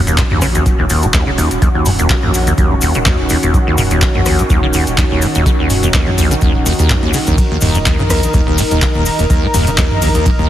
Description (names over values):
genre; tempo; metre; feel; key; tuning
acid house; 125 BPM; 4/4; swing 54% on 16ths; Eb minor; A4 = 440 Hz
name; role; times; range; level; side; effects
lush unison pad; sustained chords; 0.0-10.5 s; Eb3 to Bb4; -18 LUFS; equal; chorus, sidechain pumping
saturated sub bass; bass; 0.0-10.5 s; Eb1 to Eb2; -20 LUFS; equal; sidechain pumping
liquid acid bass; riff; 0.1-10.5 s; Eb2 to Db3; -16 LUFS; equal; tube saturation, wide subtle chorus, ping-pong delay
booming analog drum machine; drums; 0.1-10.4 s; handclaps, hi-hat, ride cymbal, rim click, toms; -18 LUFS; equal; overdrive
cabasa; percussion; 0.1-10.4 s; none; -25 LUFS; left 4 dB; none
electronic kick drum; drums; 0.2-10.5 s; none; -15 LUFS; equal; overdrive
room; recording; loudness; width
light reverb; heavily compressed radio sound, multiband compression; -11 LUFS; side -12 dB against mid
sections
0.0-10.5 A section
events
none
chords
0.0 Ebm7